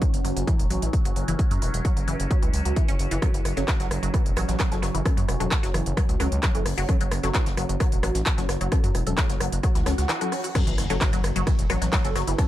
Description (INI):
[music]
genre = driving peak-time techno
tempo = 131 BPM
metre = 4/4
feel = straight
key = F# minor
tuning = A4 = 440 Hz
[part]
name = resonant blip pluck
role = riff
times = 0.0-12.3 s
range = E3 to F#4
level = -30 LUFS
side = equal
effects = phaser, sidechain pumping, dub echo
[part]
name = overtone-sweeping drone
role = drone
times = 0.0-10.6 s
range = F#3 to C#4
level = -36 LUFS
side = right 1 dB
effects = chorus, built-in reverb, sidechain pumping
[part]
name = electronic kick drum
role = drums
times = 0.0-12.5 s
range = none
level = -23 LUFS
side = equal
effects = none
[part]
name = techno drum kit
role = drums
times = 0.0-12.5 s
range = crash cymbal, handclaps, hi-hat, ride cymbal, rim click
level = -30 LUFS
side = equal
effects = sidechain pumping on hats, sidechain pumping on cymbals
[part]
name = gritty driven synth bass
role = bass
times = 0.1-12.3 s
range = E1 to F#2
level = -27 LUFS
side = equal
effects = sidechain pumping
[part]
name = filtered dub chord stab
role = stabs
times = 3.2-12.5 s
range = F#3 to A4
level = -34 LUFS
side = left 3 dB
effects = phaser, wide subtle chorus, sidechain pumping, dub echo
[part]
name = jazz brush drum kit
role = drums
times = 3.2-12.5 s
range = hi-hat, snare drum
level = -41 LUFS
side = left 3 dB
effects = sidechain pumping on hats, high-pass filter on hats, high-pass filter on snare, high-pass filter on room
[part]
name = swell and impact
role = sound effects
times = 9.8-12.4 s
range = none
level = -34 LUFS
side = right 1 dB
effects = none
[sound]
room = digital ambience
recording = dark, warm production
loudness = -21 LUFS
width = side -14 dB against mid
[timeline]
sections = 0.0-10.6 A section; 10.6-12.5 B section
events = swell 9.8-10.6; break 10.1-10.6; band accent 10.1; drop 10.6-12.5; impact 10.6-12.4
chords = 0.0 F#m